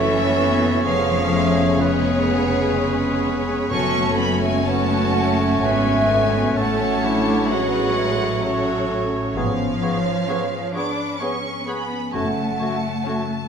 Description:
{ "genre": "classical", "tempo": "64 BPM", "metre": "3/4", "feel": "rubato", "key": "F# minor", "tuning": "A4 = 438 Hz", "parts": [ { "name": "rich studio violin section", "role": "melody", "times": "0.0-13.5 s", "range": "C#5 to D6", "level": "-28 LUFS", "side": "left 2 dB", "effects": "none" }, { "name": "clear oboe", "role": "second line", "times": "0.0-13.2 s", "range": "B4 to C#5", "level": "-30 LUFS", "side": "equal", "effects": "none" }, { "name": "mellow hollow flute section", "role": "second line", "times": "0.0-13.2 s", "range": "G#4 to B5", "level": "-27 LUFS", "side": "right 3 dB", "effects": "none" }, { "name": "rich studio violin section", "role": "second line", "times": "0.0-13.5 s", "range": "F#4 to C#5", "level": "-30 LUFS", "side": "left 4 dB", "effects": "none" }, { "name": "warm clarinet", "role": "second line", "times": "0.0-13.2 s", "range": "E4 to B4", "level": "-30 LUFS", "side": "equal", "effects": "none" }, { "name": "mellow bassoon", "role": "accompaniment", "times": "0.0-13.3 s", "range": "G#3 to C#4", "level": "-29 LUFS", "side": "right 2 dB", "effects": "none" }, { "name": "warm symphonic viola section", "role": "accompaniment", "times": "0.0-13.5 s", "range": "F#3 to D4", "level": "-26 LUFS", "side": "equal", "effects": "none" }, { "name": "dark French horn section", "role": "sustained chords", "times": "0.0-12.5 s", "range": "A3 to C#4", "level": "-27 LUFS", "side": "left 2 dB", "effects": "none" }, { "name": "concert harp", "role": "arpeggios", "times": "0.0-13.5 s", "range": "E#2 to C#6", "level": "-28 LUFS", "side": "left 8 dB", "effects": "none" }, { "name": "rich studio cello section", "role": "bass", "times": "0.0-13.5 s", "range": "C#3 to D4", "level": "-27 LUFS", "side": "right 2 dB", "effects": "none" }, { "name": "warm studio double bass section", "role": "bass", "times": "0.0-12.9 s", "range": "E#1 to A1", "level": "-26 LUFS", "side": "right 4 dB", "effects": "none" }, { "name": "timpani", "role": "percussion", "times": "3.7-5.1 s", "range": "F#2", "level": "-34 LUFS", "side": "left 1 dB", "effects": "none" } ], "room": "wet recital hall reverb, RT60 1.6 s", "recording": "none", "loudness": "-18 LUFS", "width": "side -7 dB against mid", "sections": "0.0-13.5 A section", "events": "none", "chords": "0.0 F#m; 0.8 C#7/E#; 3.7 F#m; 6.6 F#m/A; 9.4 C#7/G#; 12.1 F#m", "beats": "| 0.84 1.80 2.76 | 3.71 4.67 5.63 | 6.57 7.51 8.44 | 9.36 10.28 11.21 | 12.13 13.06" }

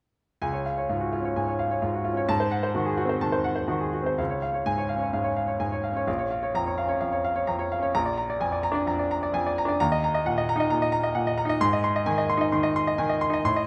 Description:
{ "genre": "classical, virtuoso piano study", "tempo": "129 BPM", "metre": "4/4", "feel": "rubato", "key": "Db major", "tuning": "A4 = 438 Hz", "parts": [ { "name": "clear baby grand piano", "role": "solo", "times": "0.4-13.7 s", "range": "Bb1 to C6", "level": "-26 LUFS", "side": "equal", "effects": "none" } ], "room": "light reverb", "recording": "none", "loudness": "-26 LUFS", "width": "mono", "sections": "0.4-4.2 A section; 4.2-13.7 B section", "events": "none", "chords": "0.4 Db; 2.3 Ab7b9; 4.2 Db; 6.1 Bbm; 7.9 Bb7; 9.8 Ebm; 11.6 Ab", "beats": "| 0.42 0.90 1.37 1.83 | 2.29 2.75 3.21 3.69 | 4.19 4.67 5.14 5.61 | 6.07 6.54 7.01 7.48 | 7.95 8.41 8.87 9.34 | 9.80 10.26 10.71 11.16 | 11.62 12.08 12.53 12.99 | 13.45" }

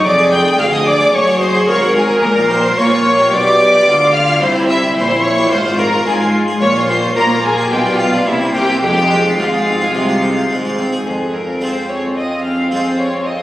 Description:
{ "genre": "classical, baroque-style concerto movement with solo episodes", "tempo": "109 BPM", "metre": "4/4", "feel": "straight", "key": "F minor", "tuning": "A4 = 440 Hz", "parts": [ { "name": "rich violin", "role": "melody", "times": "0.0-13.4 s", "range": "E4 to G5", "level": "-18 LUFS", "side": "equal", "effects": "none" }, { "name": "warm symphonic violin section", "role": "melody", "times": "0.0-13.4 s", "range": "Ab4 to G6", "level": "-19 LUFS", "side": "left 1 dB", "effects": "none" }, { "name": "rich studio violin section", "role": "second line", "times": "0.0-13.4 s", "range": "E4 to G5", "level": "-19 LUFS", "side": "equal", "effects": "none" }, { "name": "dark symphonic viola section", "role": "accompaniment", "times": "0.0-13.4 s", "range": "Ab3 to Bb4", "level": "-18 LUFS", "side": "equal", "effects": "none" }, { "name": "harpsichord", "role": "accompaniment", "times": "0.0-13.4 s", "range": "D2 to Eb5", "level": "-21 LUFS", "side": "equal", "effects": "none" }, { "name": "rich chamber cello section", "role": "bass", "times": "0.0-13.4 s", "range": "D2 to Bb3", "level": "-20 LUFS", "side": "right 1 dB", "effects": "none" }, { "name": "warm chamber double bass section", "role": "bass", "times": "0.0-11.1 s", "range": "F1 to Bb2", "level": "-25 LUFS", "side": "equal", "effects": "none" } ], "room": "wet concert hall reverb, RT60 2.3 s", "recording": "recorded on a phone in the room, studio reverb", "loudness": "-11 LUFS", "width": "side -15 dB against mid", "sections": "0.0-11.1 A section; 11.1-13.4 B section", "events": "none", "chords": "0.1 Ddim/F; 1.1 Ebm/Gb; 2.2 Gm7b5/Bb; 3.3 Bdim7; 4.4 C; 5.5 Fm/Ab; 6.6 Bbm13; 7.7 G7/B; 8.3 C7; 8.8 Fm", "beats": "| 0.06 0.60 1.15 1.69 | 2.23 2.78 3.32 3.87 | 4.42 4.97 5.51 6.06 | 6.62 7.17 7.72 8.27 | 8.83 9.39 9.95 10.51 | 11.06 11.61 12.16 12.71 | 13.26" }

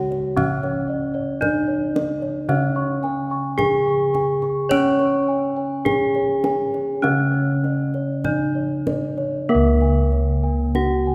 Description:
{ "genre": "Javanese gamelan", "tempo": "48-58 BPM", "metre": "4/4", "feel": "straight", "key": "C# pelog barang", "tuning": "A4 = 440 Hz", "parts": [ { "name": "gamelan-type bronze metallophone", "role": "melody", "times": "0.0-11.1 s", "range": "A#3+20c to C#5", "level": "-25 LUFS", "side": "equal", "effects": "none" }, { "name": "gamelan-type bronze metallophone", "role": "accompaniment", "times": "0.0-11.1 s", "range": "C#3 to C#4", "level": "-29 LUFS", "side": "equal", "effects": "none" }, { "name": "gamelan-type bossed gongs", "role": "arpeggios", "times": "0.0-11.1 s", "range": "C#5 to C#6", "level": "-32 LUFS", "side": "equal", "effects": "none" }, { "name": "gamelan-type bronze metallophone", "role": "arpeggios", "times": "0.0-11.1 s", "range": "A#4+20c to C#6", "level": "-34 LUFS", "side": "equal", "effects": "none" }, { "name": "gamelan-type bossed gongs", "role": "bass", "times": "0.0-11.1 s", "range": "C#2 to C#5", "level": "-26 LUFS", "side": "equal", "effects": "none" }, { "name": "kendang", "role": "percussion", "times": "0.1-11.0 s", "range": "none", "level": "-33 LUFS", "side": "equal", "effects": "none" } ], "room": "wet concert hall reverb, RT60 2.4 s", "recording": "none", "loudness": "-21 LUFS", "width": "mono", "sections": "0.0-9.5 A section; 9.5-11.1 B section", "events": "none", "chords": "none", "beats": "| 0.37 1.41 2.48 3.58 | 4.70 5.85 7.04 8.25 | 9.49 10.75" }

